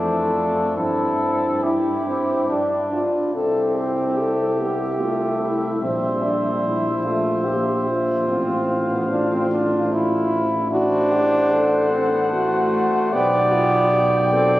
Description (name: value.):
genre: classical, brass quintet.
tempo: 73 BPM.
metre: 3/4.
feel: straight.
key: C major.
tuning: A4 = 440 Hz.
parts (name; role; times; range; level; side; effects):
mellow cornet; melody; 0.0-14.6 s; G4 to G5; -28 LUFS; left 2 dB; none.
mellow trumpet; second line; 0.0-14.6 s; D4 to D5; -24 LUFS; right 1 dB; none.
clear French horn; accompaniment; 0.0-14.6 s; A3 to A4; -23 LUFS; left 1 dB; none.
warm trombone; accompaniment; 0.0-14.6 s; G3 to F4; -24 LUFS; right 1 dB; none.
dark bass trombone; bass; 0.0-14.6 s; A1 to G2; -26 LUFS; equal; none.
room: wet cathedral reverb, RT60 5.5 s.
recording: recorded on a phone in the room, studio ambience.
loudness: -18 LUFS.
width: side -16 dB against mid.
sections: 0.0-3.3 A section; 3.3-14.6 B section.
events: none.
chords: 0.0 Dm/F; 0.8 C/G; 2.5 G5; 3.3 C; 5.8 C7/Bb; 8.3 F/A; 10.7 D7/A; 13.1 G/B.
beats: | 0.78 1.64 2.50 | 3.35 4.18 5.00 | 5.82 6.64 7.46 | 8.28 9.10 9.91 | 10.72 11.52 12.32 | 13.13 13.94.